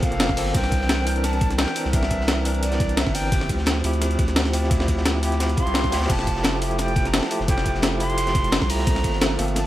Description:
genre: liquid drum and bass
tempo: 173 BPM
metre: 4/4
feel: straight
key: F major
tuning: A4 = 440 Hz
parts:
  - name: bright concert flute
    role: melody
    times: 0.0-9.7 s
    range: D5 to C6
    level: -29 LUFS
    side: right 1 dB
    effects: tape echo
  - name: overdriven tine electric piano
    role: accompaniment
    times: 0.0-9.7 s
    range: E3 to Bb4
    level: -26 LUFS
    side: equal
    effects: fast tremolo, digital delay
  - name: breakbeat sampler-style drum kit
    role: drums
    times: 0.0-9.6 s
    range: crash cymbal, hi-hat, snare drum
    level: -25 LUFS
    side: left 1 dB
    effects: none
  - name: crunchy breakbeat drum kit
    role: drums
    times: 0.0-9.6 s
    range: hi-hat, ride cymbal, snare drum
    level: -31 LUFS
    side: equal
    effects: high-pass filter on cymbals, high-pass filter on hats, high-pass filter on snare, high-pass filter on room
  - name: electronic kick drum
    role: drums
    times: 0.0-9.1 s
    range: none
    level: -24 LUFS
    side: equal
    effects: none
  - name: saturated sub bass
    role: bass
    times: 0.1-9.7 s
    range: F1 to D2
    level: -24 LUFS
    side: equal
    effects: none
  - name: swell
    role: sound effects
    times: 5.6-6.1 s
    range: none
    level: -34 LUFS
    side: right 1 dB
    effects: none
room: light reverb, small room ambience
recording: none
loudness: -19 LUFS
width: side -14 dB against mid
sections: 0.0-9.7 A section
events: swell 5.6-6.1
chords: 0.0 Gm11; 0.5 C9; 3.3 Dm11; 6.1 Fmaj9; 8.9 Gm11

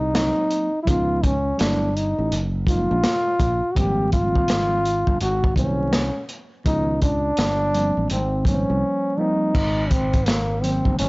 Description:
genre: hip hop, jazz-hop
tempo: 83 BPM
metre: 4/4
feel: swing 62% on 16ths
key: Ab major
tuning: A4 = 440 Hz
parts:
  - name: breathy trombone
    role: melody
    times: 0.0-11.1 s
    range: Bb3 to G4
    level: -22 LUFS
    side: equal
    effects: none
  - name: sustaining fretless electric bass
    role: bass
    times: 0.0-11.1 s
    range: Gb1 to Db2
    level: -24 LUFS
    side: equal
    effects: transformer saturation, lush chorus
  - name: tine electric piano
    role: accompaniment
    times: 0.1-11.1 s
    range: Eb3 to C5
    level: -26 LUFS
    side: right 1 dB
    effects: none
  - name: crunchy breakbeat drum kit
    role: drums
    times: 0.1-11.1 s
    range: crash cymbal, hi-hat, kick drum, snare drum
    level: -23 LUFS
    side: equal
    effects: none
room: studio reverb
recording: dry, gritty hardware recording, transformer saturation, vinyl crackle, nothing above 7.7 kHz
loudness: -18 LUFS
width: side -25 dB against mid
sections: 0.0-9.5 A section; 9.5-11.1 A section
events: silent gap 8.8-9.5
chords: 0.0 Ab9 (rootless); 0.9 Db7; 1.6 Gmaj13; 2.3 Gbmaj13; 3.8 Abmaj13; 5.2 Ab9; 6.7 Db7; 7.4 Gsus2; 8.1 Abmaj13; 9.5 Abadd9

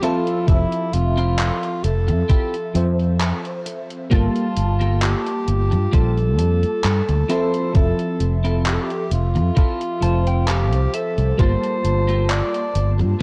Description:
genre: vaporwave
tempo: 66 BPM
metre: 4/4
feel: swing 54% on 16ths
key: F major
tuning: A4 = 439 Hz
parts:
  - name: clear alto saxophone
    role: melody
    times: 0.0-13.0 s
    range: E4 to D5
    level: -28 LUFS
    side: equal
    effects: vintage 12-bit sampler grit, tape echo
  - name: FM electric piano with soft pad layer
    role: accompaniment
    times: 0.0-13.2 s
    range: F3 to A5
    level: -27 LUFS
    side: equal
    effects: ensemble chorus
  - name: clean electric guitar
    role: riff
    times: 0.0-13.2 s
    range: Bb3 to A5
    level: -33 LUFS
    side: equal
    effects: analog chorus
  - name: gated 80s digital drum machine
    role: drums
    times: 0.0-13.2 s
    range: handclaps, hi-hat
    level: -30 LUFS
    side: equal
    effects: gated reverb
  - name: fretless electric bass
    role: bass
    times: 0.5-13.1 s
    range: F1 to G2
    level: -21 LUFS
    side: equal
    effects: none
  - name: electronic kick drum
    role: drums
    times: 0.5-11.6 s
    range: none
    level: -19 LUFS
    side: equal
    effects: none
room: light reverb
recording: cassette tape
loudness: -19 LUFS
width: mono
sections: 0.0-13.2 A section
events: clean electric guitar fill 9.6-11.4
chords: 0.0 Fmaj7; 4.1 Gm9; 7.3 Fmaj7; 11.4 Gm9

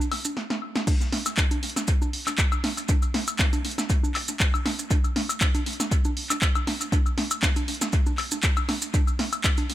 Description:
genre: house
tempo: 119 BPM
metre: 4/4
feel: swing 54% on 16ths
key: none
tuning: none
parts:
  - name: punchy analog drum machine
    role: drums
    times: 0.0-9.7 s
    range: congas, crash cymbal, handclaps, hi-hat, snare drum, woodblock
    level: -26 LUFS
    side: equal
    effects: analog delay
  - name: maracas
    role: percussion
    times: 0.0-9.7 s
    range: none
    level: -31 LUFS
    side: right 3 dB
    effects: analog delay
  - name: electronic kick drum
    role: drums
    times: 0.9-9.6 s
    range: none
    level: -23 LUFS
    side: equal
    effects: overdrive
room: little or no reverb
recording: echo-heavy mix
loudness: -22 LUFS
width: side -14 dB against mid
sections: 0.9-9.7 A section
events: drum fill 0.4-0.9; drop 0.9-9.7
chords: none

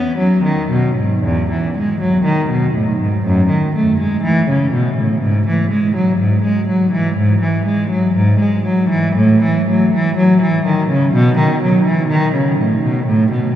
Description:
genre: classical, baroque-style suite movement for unaccompanied cello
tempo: 61 BPM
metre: 4/4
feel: rubato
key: unclear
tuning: A4 = 440 Hz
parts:
  - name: dark cello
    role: solo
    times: 0.0-13.5 s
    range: E2 to B3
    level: -13 LUFS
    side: equal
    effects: none
room: wet cathedral reverb, RT60 5.6 s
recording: heard from further back in the room, nothing above 10.3 kHz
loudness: -13 LUFS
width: side -11 dB against mid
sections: 0.0-13.6 A section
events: none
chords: none

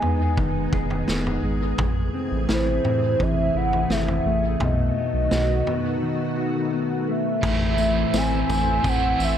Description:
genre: dream pop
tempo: 85 BPM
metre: 4/4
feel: straight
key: unclear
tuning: A4 = 440 Hz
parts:
  - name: warbly nostalgic lead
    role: melody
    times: 0.0-9.4 s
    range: C5 to G#5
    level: -26 LUFS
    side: right 1 dB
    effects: chorus, tremolo, analog delay
  - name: soft string machine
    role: sustained chords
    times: 0.0-9.4 s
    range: C3 to E5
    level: -29 LUFS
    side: right 1 dB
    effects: ensemble chorus
  - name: mellow electric guitar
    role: arpeggios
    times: 0.0-9.4 s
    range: A2 to G#4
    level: -26 LUFS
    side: left 4 dB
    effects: lush chorus, analog delay
  - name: warm sub bass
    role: bass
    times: 0.0-9.4 s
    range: D#1 to B2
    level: -25 LUFS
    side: equal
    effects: none
  - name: vintage drum kit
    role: drums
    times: 0.0-9.4 s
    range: crash cymbal, kick drum, snare drum, tambourine, toms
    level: -28 LUFS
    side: equal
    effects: none
  - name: crunchy overdriven guitar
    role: accompaniment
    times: 7.4-9.4 s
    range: A2 to E4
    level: -28 LUFS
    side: right 6 dB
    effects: tremolo, wide subtle chorus, analog delay
room: light reverb, studio ambience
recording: echo-heavy mix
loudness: -20 LUFS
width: side -9 dB against mid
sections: 0.0-7.4 A section; 7.4-9.4 B section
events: break 6.0-7.4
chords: 0.0 Emaj7; 1.8 Am; 4.6 B7; 7.4 Am

